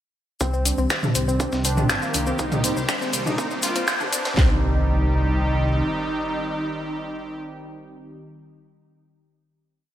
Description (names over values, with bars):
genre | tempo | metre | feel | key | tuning
melodic techno | 121 BPM | 4/4 | straight | C minor | A4 = 438 Hz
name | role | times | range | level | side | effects
wide unison lead | melody | 0.4-8.2 s | Bb3 to F4 | -29 LUFS | equal | sidechain pumping, digital delay
sweeping resonant pad | sustained chords | 0.4-8.2 s | Eb3 to G4 | -31 LUFS | right 1 dB | chorus, sidechain pumping
warbly dusty pluck | arpeggios | 0.4-4.6 s | C4 to C5 | -29 LUFS | left 1 dB | chorus, sidechain pumping, digital delay
dark detuned saw bass | bass | 0.4-5.8 s | G1 to C2 | -24 LUFS | equal | tube saturation, sidechain pumping
dusty soul sampler-style drum kit | drums | 0.4-4.4 s | hi-hat, snare drum | -34 LUFS | right 1 dB | none
house drum kit | drums | 0.4-4.5 s | handclaps, kick drum, snare drum | -22 LUFS | equal | high-pass filter on kick, high-pass filter on snare, high-pass filter on room
cabasa | percussion | 0.4-4.3 s | none | -31 LUFS | left 3 dB | none
riser and impact | sound effects | 2.1-8.2 s | none | -32 LUFS | equal | none
house drum kit | drums | 0.7-4.2 s | finger snaps, hi-hat, toms | -24 LUFS | equal | none
room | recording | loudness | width
moderate lush hall reverb, RT60 2.3 s | bright 1980s-style digital production, high-pass filter | -20 LUFS | side -11 dB against mid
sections
0.4-4.4 build; 4.4-8.3 final chord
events
build-up 0.4-4.4; filter sweep 0.4-4.4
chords
0.4 Cm; 2.4 Eb/C; 4.4 Cm